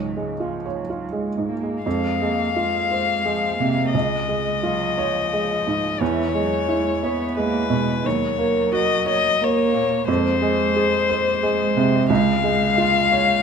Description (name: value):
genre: neoclassical piano and strings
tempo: 88 BPM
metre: 3/4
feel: rubato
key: unclear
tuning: A4 = 440 Hz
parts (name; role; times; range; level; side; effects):
- muted cello; second line; 0.0-13.4 s; E3 to B3; -27 LUFS; right 5 dB; none
- felt-muted upright piano; accompaniment; 0.0-13.4 s; Db2 to Db5; -22 LUFS; right 3 dB; none
- muted violin; melody; 1.8-13.4 s; B4 to F5; -21 LUFS; left 8 dB; none
room: wet recital hall reverb, RT60 1.8 s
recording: minimal, uncompressed stereo recording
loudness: -18 LUFS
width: side -6 dB against mid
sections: 0.0-1.9 A section; 1.9-13.4 B section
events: none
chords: 0.0 Db; 1.9 Fm; 3.9 Db; 6.0 E6; 8.1 Ebm7; 10.1 Fm; 12.1 Db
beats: 0.41 1.13 | 1.85 2.55 3.24 | 3.93 4.63 5.32 | 6.00 6.69 7.37 | 8.05 8.73 9.41 | 10.08 10.75 11.43 | 12.10 12.77